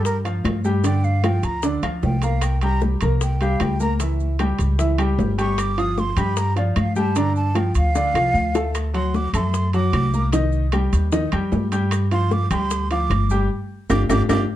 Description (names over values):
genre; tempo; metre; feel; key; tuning
Afro-Cuban jazz; 152 BPM; 4/4; straight; G minor; A4 = 440 Hz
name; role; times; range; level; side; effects
breathy mellow silver concert flute; melody; 0.0-14.4 s; Bb4 to Eb6; -26 LUFS; right 2 dB; none
clear baby grand piano; accompaniment; 0.0-14.4 s; D3 to Bb5; -24 LUFS; equal; none
upright bass; bass; 0.0-14.4 s; G1 to G2; -21 LUFS; equal; none
bongos; percussion; 0.1-14.4 s; none; -30 LUFS; left 7 dB; none
congas; percussion; 0.1-14.4 s; none; -28 LUFS; left 2 dB; none
maracas; percussion; 0.1-14.4 s; none; -39 LUFS; right 7 dB; none
timbales; percussion; 0.3-14.4 s; none; -31 LUFS; right 5 dB; none
claves; percussion; 0.5-14.4 s; none; -35 LUFS; left 3 dB; none
room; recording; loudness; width
light reverb; dark, warm production; -18 LUFS; side -13 dB against mid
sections
0.0-14.6 A section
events
flute solo 0.0-14.6; drum fill 8.0-8.7; band accent 13.5-14.6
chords
0.0 Gm7; 2.4 C5; 4.0 C#dim; 5.6 G5; 8.7 D7; 10.3 Cm; 11.9 G5